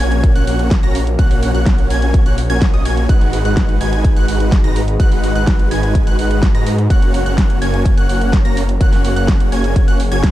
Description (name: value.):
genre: EDM, festival progressive house.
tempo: 126 BPM.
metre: 4/4.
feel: straight.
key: F# major.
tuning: A4 = 440 Hz.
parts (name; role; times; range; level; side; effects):
lush unison pad; sustained chords; 0.0-10.3 s; G#3 to B4; -25 LUFS; left 1 dB; chorus, vintage 12-bit sampler grit, sidechain pumping.
plucky unison lead; arpeggios; 0.0-10.3 s; D#6 to A#6; -26 LUFS; equal; sidechain pumping, digital delay.
supersaw chords; riff; 0.0-10.3 s; G#3 to A#5; -21 LUFS; right 1 dB; sidechain pumping, digital delay.
detuned saw bass; bass; 0.0-10.3 s; F#1 to G#2; -18 LUFS; equal; sidechain pumping.
pop drum kit; drums; 0.0-10.3 s; hi-hat, snare drum; -24 LUFS; equal; none.
electronic kick drum; drums; 0.2-10.3 s; none; -13 LUFS; equal; none.
room: digital ambience.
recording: dark, warm production.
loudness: -12 LUFS.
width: side -14 dB against mid.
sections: 0.0-10.3 A section.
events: none.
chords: 0.0 F#/A#; 3.1 G#m7; 6.9 F#.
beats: 0.24 0.71 | 1.19 1.66 2.14 2.62 | 3.09 3.57 4.04 4.52 | 5.00 5.47 5.95 6.43 | 6.90 7.38 7.86 8.33 | 8.81 9.28 9.76 10.24.